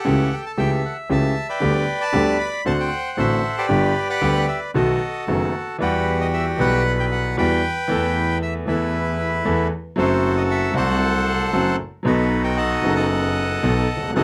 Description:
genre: tango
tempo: 115 BPM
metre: 4/4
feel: rubato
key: G major, E harmonic minor from 5.8 s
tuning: A4 = 440 Hz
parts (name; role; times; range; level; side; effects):
- bandoneon; melody; 0.0-14.2 s; D#4 to B5; -25 LUFS; equal; none
- warm grand piano; accompaniment; 0.0-14.2 s; D#1 to F#5; -23 LUFS; equal; none
- clear double bass; bass; 0.1-14.2 s; F#1 to E2; -29 LUFS; equal; none
room: moderate small room reverb, RT60 0.5 s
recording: rough home demo mix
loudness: -21 LUFS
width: mono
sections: 0.0-5.8 A section; 5.8-14.2 B section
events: none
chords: 0.0 A7/C#; 1.6 G/D; 2.7 D7; 3.7 G; 4.7 B7; 5.8 Emadd9; 7.9 Asus2/E; 10.0 F#dim; 12.1 B7

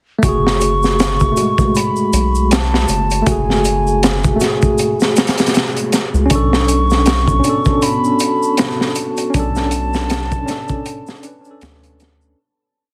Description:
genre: trip hop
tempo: 79 BPM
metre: 4/4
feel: swing 57% on 16ths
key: F# minor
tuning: A4 = 441 Hz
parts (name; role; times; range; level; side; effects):
- mellow baroque flute; melody; 0.2-11.6 s; G#5 to C#6; -23 LUFS; equal; dub echo
- tine electric piano; accompaniment; 0.2-12.4 s; G#3 to B4; -21 LUFS; equal; medium tremolo
- round analog bass; bass; 0.2-12.3 s; F#1 to D2; -20 LUFS; equal; none
- crunchy breakbeat drum kit; drums; 0.2-12.2 s; hi-hat, kick drum, snare drum; -20 LUFS; equal; none
- tube shaker; percussion; 0.2-12.3 s; none; -32 LUFS; equal; none
- dark analog pad; sustained chords; 7.4-12.3 s; B3 to A5; -26 LUFS; equal; chorus, phaser
room: small room ambience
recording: heavily compressed radio sound, multiband compression, vinyl crackle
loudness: -15 LUFS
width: mono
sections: 0.2-12.4 groove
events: fade-out 8.3-12.4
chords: 0.2 F#madd9; 6.3 Bm7

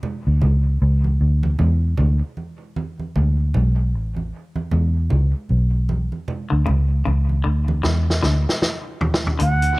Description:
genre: dub reggae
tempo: 77 BPM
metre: 4/4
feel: swing 59% on 16ths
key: D major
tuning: A4 = 440 Hz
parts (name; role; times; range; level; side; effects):
- congas; percussion; 0.0-9.4 s; none; -28 LUFS; right 3 dB; none
- vintage muted fingered electric bass; bass; 0.3-9.8 s; A1 to E2; -17 LUFS; equal; none
- semi-hollow electric guitar; riff; 6.5-9.6 s; C#3 to E3; -28 LUFS; left 4 dB; dub echo
- vintage drum kit; drums; 7.8-9.8 s; hi-hat, snare drum, toms; -22 LUFS; equal; none
- mellow concert flute; melody; 9.4-9.8 s; F#5; -20 LUFS; right 3 dB; none
room: studio reverb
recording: none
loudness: -17 LUFS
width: side -22 dB against mid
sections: 0.0-9.4 A section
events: break 0.0-9.4; drum fill 7.8-9.4; part muted 9.4-9.8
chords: 0.0 N.C.; 1.6 Dsus2; 3.1 D5; 4.7 E5; 6.3 N.C.; 7.8 Dsus2

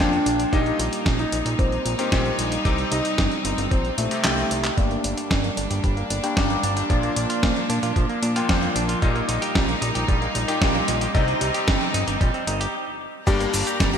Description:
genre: italo disco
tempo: 113 BPM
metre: 4/4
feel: straight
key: G minor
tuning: A4 = 440 Hz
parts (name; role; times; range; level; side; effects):
- warm concert grand piano; melody; 0.0-4.7, 13.3-14.0 s; G3 to G4; -27 LUFS; left 1 dB; vintage 12-bit sampler grit, ping-pong delay
- rich symphonic string section; sustained chords; 0.0-14.0 s; F3 to Bb5; -28 LUFS; equal; none
- bright electric grand piano; stabs; 0.0-14.0 s; G2 to G5; -27 LUFS; left 2 dB; lush chorus, low-pass filter, ping-pong delay
- fat analog bass; bass; 0.0-14.0 s; G1 to Bb2; -27 LUFS; equal; none
- dusty soul sampler-style drum kit; drums; 0.0-14.0 s; cabasa, crash cymbal, handclaps, hi-hat, snare drum; -26 LUFS; right 1 dB; studio reverb, gated reverb
- electronic kick drum; drums; 0.0-13.9 s; none; -22 LUFS; equal; studio reverb
- direct-recorded clean electric guitar; arpeggios; 4.8-14.0 s; F3 to G4; -29 LUFS; right 2 dB; low-pass filter, ping-pong delay
room: wet lush hall reverb, RT60 2.4 s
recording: bright 1980s-style digital production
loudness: -20 LUFS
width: side -8 dB against mid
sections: 0.0-4.8 A section; 4.8-13.3 B section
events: kick drops out 4.2-4.8; drum fill 4.2-4.8; filter sweep on clean electric guitar 4.8-13.3; filter sweep on electric grand piano 4.8-13.3; break 12.7-13.3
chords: 0.0 Bb; 0.5 Eb/Bb; 2.7 Cm; 4.8 Gm; 6.9 Bb; 9.0 Eb/Bb; 11.1 Cm; 13.3 Gm

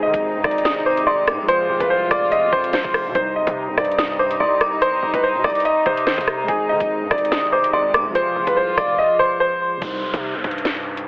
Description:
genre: hip hop, drill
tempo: 144 BPM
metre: 4/4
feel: half-time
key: C minor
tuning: A4 = 440 Hz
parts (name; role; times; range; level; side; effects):
- clear concert grand piano; melody; 0.0-9.8 s; Ab4 to Eb5; -19 LUFS; equal; low-pass filter
- tine electric piano; accompaniment; 0.0-11.1 s; C3 to C5; -30 LUFS; equal; medium tremolo, low-pass filter
- dark chamber string section; sustained chords; 0.0-9.8 s; C3 to F4; -25 LUFS; left 1 dB; none
- distorted 808-style bass; bass; 0.0-11.0 s; F1 to Eb3; -30 LUFS; equal; distortion
- drill drum kit; drums; 0.1-11.1 s; hi-hat, kick drum, rim click, snare drum; -23 LUFS; equal; vintage 12-bit sampler grit
- dark detuned synth bell; second line; 0.7-9.8 s; C6 to Eb6; -23 LUFS; equal; chorus, phaser, digital delay
- downlifter; sound effects; 9.8-11.1 s; none; -27 LUFS; equal; none
room: moderate scoring stage reverb, RT60 1.6 s, digital ambience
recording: heavily compressed radio sound, telephone sound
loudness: -16 LUFS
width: side -30 dB against mid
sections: 0.0-9.8 A section; 9.8-11.1 B section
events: drums muted 9.0-9.8; break 9.8-11.1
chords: 0.0 Ab; 1.5 Fm; 3.2 Cm; 6.5 Ab; 8.2 Fm; 9.8 Cm

